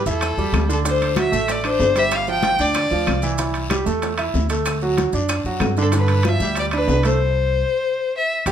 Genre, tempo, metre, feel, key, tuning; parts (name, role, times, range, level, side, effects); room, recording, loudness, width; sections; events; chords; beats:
latin, salsa; 189 BPM; 4/4; straight; C major; A4 = 439 Hz
rich fiddle; melody; 0.0-3.2, 5.8-8.5 s; A4 to G5; -21 LUFS; left 2 dB
clear concert grand piano; accompaniment; 0.1-8.5 s; D3 to G5; -23 LUFS; right 4 dB
upright bass; bass; 0.1-8.5 s; G1 to G2; -22 LUFS; equal
bongos; percussion; 0.1-8.5 s; -32 LUFS; left 6 dB
congas; percussion; 0.1-8.5 s; -30 LUFS; left 5 dB
guiro; percussion; 0.1-8.5 s; -36 LUFS; left 5 dB
maracas; percussion; 0.1-8.5 s; -35 LUFS; right 5 dB
claves; percussion; 0.2-6.9 s; -34 LUFS; left 6 dB
timbales; percussion; 0.2-8.5 s; -29 LUFS; right 4 dB
light reverb; -17 LUFS; side -9 dB against mid
0.0-8.5 A section
stop 7.2-8.5
0.0 A5; 0.9 D7; 2.1 G5; 3.4 C6; 4.7 D; 5.9 G7; 7.2 C
0.22 0.54 | 0.85 1.17 1.49 1.80 | 2.12 2.44 2.76 3.07 | 3.39 3.71 4.03 4.34 | 4.66 4.98 5.29 5.61 | 5.93 6.25 6.57 6.88 | 7.20 7.52 7.83 8.15 | 8.47